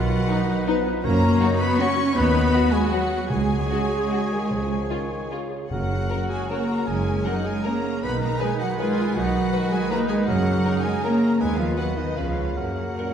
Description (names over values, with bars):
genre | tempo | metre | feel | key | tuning
classical, orchestral ballroom waltz | 138-174 BPM | 3/4 | rubato | F# major | A4 = 440 Hz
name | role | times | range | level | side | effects
mellow clarinet | second line | 0.0-13.1 s | D#4 to C#5 | -31 LUFS | left 2 dB | none
mellow hollow concert flute | second line | 0.0-13.1 s | D#5 to C#6 | -33 LUFS | left 3 dB | none
rich studio violin section | second line | 0.0-13.1 s | D#5 to C#6 | -34 LUFS | left 2 dB | none
warm oboe | second line | 0.0-13.1 s | A#4 to C#5 | -34 LUFS | equal | none
dark bassoon | accompaniment | 0.0-13.1 s | A#2 to F#3 | -32 LUFS | right 2 dB | none
rich studio viola section | accompaniment | 0.0-13.1 s | A#3 to G#4 | -32 LUFS | right 1 dB | none
clear studio double bass section | bass | 0.0-12.9 s | F#1 to F#2 | -27 LUFS | right 1 dB | none
rich studio cello section | bass | 0.0-13.1 s | D#3 to C#4 | -24 LUFS | right 1 dB | none
rich studio violin section | melody | 0.3-13.1 s | D#4 to B4 | -33 LUFS | left 5 dB | none
dark French horn section | sustained chords | 0.3-13.1 s | B3 to B4 | -35 LUFS | left 4 dB | none
timpani | percussion | 1.0-6.3, 10.3-10.8 s | F#2 to C#3 | -32 LUFS | right 1 dB | none
room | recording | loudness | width
wet scoring stage reverb, RT60 1.9 s | heard from further back in the room | -20 LUFS | side -8 dB against mid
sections
0.0-13.1 A section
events
none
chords
0.0 B; 1.0 F#; 2.2 B/D#; 3.3 C#sus4; 4.5 C#; 5.7 F#; 8.0 B; 10.3 F#; 11.4 B/D#; 12.2 C#7; 12.6 F#